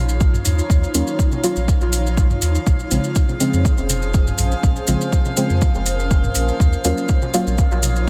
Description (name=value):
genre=dub techno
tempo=122 BPM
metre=4/4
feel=straight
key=Bb minor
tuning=A4 = 444 Hz
part: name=granular cloud pad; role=sustained chords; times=0.0-8.1 s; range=Db4 to Db5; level=-30 LUFS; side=equal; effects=built-in reverb, sidechain pumping
part: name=warm sub bass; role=bass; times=0.0-8.1 s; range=F1 to F2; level=-22 LUFS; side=equal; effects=tube saturation, sidechain pumping
part: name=metallic inharmonic drone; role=texture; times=0.0-8.1 s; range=F3 to F5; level=-32 LUFS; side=equal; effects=chorus, built-in reverb, sidechain pumping
part: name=maracas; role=percussion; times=0.1-8.1 s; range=none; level=-30 LUFS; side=equal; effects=none
part: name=electronic kick drum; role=drums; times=0.2-7.7 s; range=none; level=-19 LUFS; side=equal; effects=overdrive
part: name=electronic toms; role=percussion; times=0.3-7.9 s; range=none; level=-30 LUFS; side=equal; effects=sidechain pumping on toms
part: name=electronic hi-hat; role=drums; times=0.5-7.9 s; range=none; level=-29 LUFS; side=equal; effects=overdrive
part: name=deep mellow chord stab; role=stabs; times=0.9-7.5 s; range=Db3 to F4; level=-26 LUFS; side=equal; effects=chorus, phaser, sidechain pumping, dub echo
room=little or no reverb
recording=none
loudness=-18 LUFS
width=mono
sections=0.0-8.1 A section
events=filter sweep on synth stab 0.0-8.1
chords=0.0 Ebm9; 2.7 Bbm9; 6.6 Ebm9